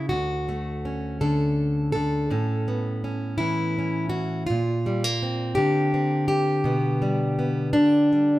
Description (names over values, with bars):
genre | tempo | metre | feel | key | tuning
folk, solo fingerstyle acoustic guitar | 55 BPM (dotted quarters) | 6/8 | straight | unclear | A4 = 440 Hz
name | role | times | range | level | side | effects
fingerpicked plugged-in steel-string acoustic guitar | solo | 0.0-8.4 s | D2 to A4 | -21 LUFS | equal | none
room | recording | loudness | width
moderate stone room reverb, RT60 0.9 s | band playing live in one room | -22 LUFS | side -16 dB against mid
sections
0.0-2.3 A section; 2.3-8.4 B section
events
none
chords
0.1 Dmaj7; 2.3 Aadd9; 4.5 Bbadd9; 6.6 G/B